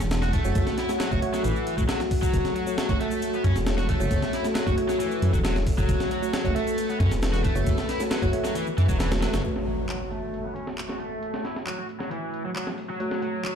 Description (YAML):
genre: breakbeat, breaks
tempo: 135 BPM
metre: 4/4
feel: straight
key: F# minor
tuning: A4 = 438 Hz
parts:
  - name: deep dark ambient pad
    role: sustained chords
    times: 0.0-13.6 s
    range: A3 to F#5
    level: -32 LUFS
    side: left 2 dB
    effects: chorus, built-in reverb, vintage 12-bit sampler grit, sidechain pumping
  - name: detuned saw bass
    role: bass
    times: 0.0-9.4 s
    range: E1 to F#2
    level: -25 LUFS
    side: equal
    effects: none
  - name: breakbeat sampler-style drum kit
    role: drums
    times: 0.0-13.6 s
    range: hi-hat, kick drum, snare drum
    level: -27 LUFS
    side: equal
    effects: low-pass filter on kick, low-pass filter on hats, low-pass filter on snare
  - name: electronic shaker and handclaps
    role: drums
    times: 0.0-13.5 s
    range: none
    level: -40 LUFS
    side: left 2 dB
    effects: none
  - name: cranked stack guitar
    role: riff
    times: 0.2-13.6 s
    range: E3 to F#4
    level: -31 LUFS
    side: equal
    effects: overdrive, tube saturation, low-pass filter, digital delay
  - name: bell-like tine electric piano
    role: stabs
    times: 0.4-13.6 s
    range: A3 to E5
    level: -31 LUFS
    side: right 2 dB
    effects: lush chorus, low-pass filter, digital delay
  - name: impact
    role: sound effects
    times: 9.4-11.2 s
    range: none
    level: -36 LUFS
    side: equal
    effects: none
room: light reverb, digital ambience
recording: played on a big sound system in a bare room, large studio reverb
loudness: -23 LUFS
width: side -8 dB against mid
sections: 0.0-9.4 A section; 9.4-13.6 B section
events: impact 9.4-11.2; filter sweep on overdriven electric guitar 9.4-13.6; filter sweep on ambient pad 9.4-13.6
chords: 0.0 F#m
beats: 0.11 | 0.56 1.00 1.45 1.89 | 2.33 2.78 3.22 3.67 | 4.11 4.56 5.00 5.45 | 5.89 6.33 6.78 7.22 | 7.67 8.11 8.56 9.00 | 9.45 9.89 10.34 10.78 | 11.22 11.67 12.11 12.56 | 13.00 13.45